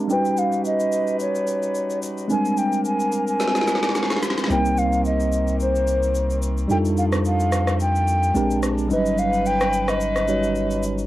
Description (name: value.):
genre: amapiano.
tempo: 109 BPM.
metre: 4/4.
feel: swing 55% on 16ths.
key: unclear.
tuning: A4 = 445 Hz.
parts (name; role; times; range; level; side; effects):
tine electric piano; accompaniment; 0.0-11.1 s; F#3 to Db5; -24 LUFS; right 1 dB; overdrive, medium stereo tremolo, low-pass filter.
muted French horn section; sustained chords; 0.0-11.1 s; C3 to B4; -32 LUFS; left 1 dB; low-pass filter.
mellow hollow concert flute; melody; 0.1-10.8 s; C5 to Ab5; -23 LUFS; equal; low-pass filter, cassette tape, analog delay.
electronic shaker, snare drum and rim click; drums; 0.1-11.1 s; none; -27 LUFS; left 1 dB; none.
punchy sub bass; bass; 4.5-11.1 s; G1 to F2; -24 LUFS; equal; none.
room: light reverb.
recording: home recording on cassette.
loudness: -19 LUFS.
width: side -15 dB against mid.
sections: 0.0-11.1 A section.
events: filter sweep 0.0-11.1; drum fill 3.4-4.5.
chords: 0.1 Eb7alt/G; 2.3 Abmaj9#11; 4.5 Cm7; 6.7 F13; 8.4 Bb13; 8.9 Eb7alt/G.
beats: | 0.10 0.65 1.20 1.75 | 2.30 2.85 3.40 3.95 | 4.50 5.05 5.60 6.15 | 6.70 7.25 7.80 8.35 | 8.90 9.46 10.01 10.55.